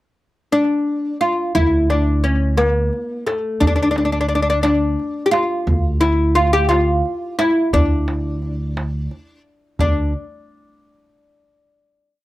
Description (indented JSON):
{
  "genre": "Persian modal ensemble",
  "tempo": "58 BPM (dotted quarters)",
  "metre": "6/8",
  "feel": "straight",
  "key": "D avaz esfahan",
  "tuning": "A4 = 439 Hz",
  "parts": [
    { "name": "oud", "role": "melody", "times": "0.5-10.1 s", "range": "A3 to G4", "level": "-17 LUFS", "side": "left 1 dB", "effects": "slapback echo" },
    { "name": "upright bass", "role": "bass", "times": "1.6-10.1 s", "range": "D2", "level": "-20 LUFS", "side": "equal", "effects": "none" },
    { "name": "tombak", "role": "percussion", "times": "1.6-10.1 s", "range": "none", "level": "-22 LUFS", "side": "right 1 dB", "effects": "none" }
  ],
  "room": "light reverb",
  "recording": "dry, close 1970s-style studio recording",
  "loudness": "-16 LUFS",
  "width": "side -16 dB against mid",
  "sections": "0.0-1.6 pickup bar; 1.6-9.8 A section; 9.8-11.9 final note",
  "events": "none",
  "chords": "none"
}